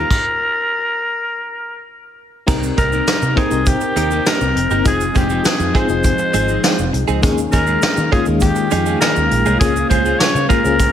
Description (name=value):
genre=1980s-style pop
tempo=101 BPM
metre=4/4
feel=straight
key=unclear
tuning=A4 = 440 Hz
part: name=raspy alto saxophone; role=melody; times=0.0-10.9 s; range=G4 to Db5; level=-19 LUFS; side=left 1 dB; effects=none
part: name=FM electric piano with tremolo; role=accompaniment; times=0.0-10.9 s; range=Ab3 to C5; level=-22 LUFS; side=left 5 dB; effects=none
part: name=direct-recorded clean electric guitar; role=riff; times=0.0-10.8 s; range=Ab3 to Bb4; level=-24 LUFS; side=right 8 dB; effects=wide subtle chorus
part: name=vintage muted fingered electric bass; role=bass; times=0.0-10.9 s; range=F1 to Eb3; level=-21 LUFS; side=equal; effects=none
part: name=vintage brush drum kit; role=drums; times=0.1-10.9 s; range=crash cymbal, hi-hat, kick drum, snare drum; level=-18 LUFS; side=equal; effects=gated reverb
part: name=ensemble organ-string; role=sustained chords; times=2.5-10.9 s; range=C3 to G5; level=-23 LUFS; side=left 1 dB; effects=phaser, ensemble chorus
part: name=tube shaker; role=percussion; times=2.5-10.9 s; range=none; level=-33 LUFS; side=right 12 dB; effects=none
room=light reverb, small room ambience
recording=none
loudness=-14 LUFS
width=side -9 dB against mid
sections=0.0-2.5 A section; 2.5-10.9 B section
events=stop 0.1-2.5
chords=0.0 Ebadd9; 2.5 Cm7; 4.9 Fm7; 7.2 Eb7sus4; 9.6 Bbm7/Db